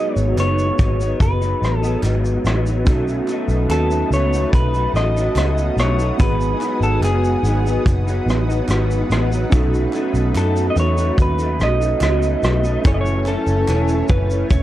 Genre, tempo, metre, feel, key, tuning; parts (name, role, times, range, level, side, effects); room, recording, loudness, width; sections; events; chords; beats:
indie pop, bedroom pop; 72 BPM; 4/4; straight; A4 = 440 Hz
electric slide guitar; melody; 0.0-14.6 s; G#4 to D#5; -23 LUFS; equal; lush chorus, analog delay
electric guitar through a small old amp; accompaniment; 0.0-14.6 s; F#2 to D#4; -23 LUFS; left 1 dB; ensemble chorus, warbly pitch drift
warbly lo-fi synth keys; accompaniment; 0.0-14.6 s; B3 to G#5; -26 LUFS; right 3 dB; chorus, cassette tape
vintage muted picked electric bass; bass; 0.2-14.6 s; E1 to F#2; -19 LUFS; equal
soft brush drum kit; drums; 0.2-14.6 s; hi-hat, kick drum, rim click, shaker; -20 LUFS; equal
group handclap; percussion; 0.4-13.9 s; -36 LUFS; right 3 dB
lush unison pad; sustained chords; 2.9-14.6 s; B4 to D#6; -32 LUFS; equal; chorus
light reverb; dark, warm production; -16 LUFS; side -14 dB against mid
0.0-14.6 A section
0.0 G#m7; 2.9 B7; 6.2 G#m7; 9.5 B7; 12.8 F#m7
0.37 1.20 2.04 | 2.87 3.70 4.53 5.36 | 6.19 7.03 7.86 8.69 | 9.52 10.35 11.18 12.02 | 12.85 13.68 14.51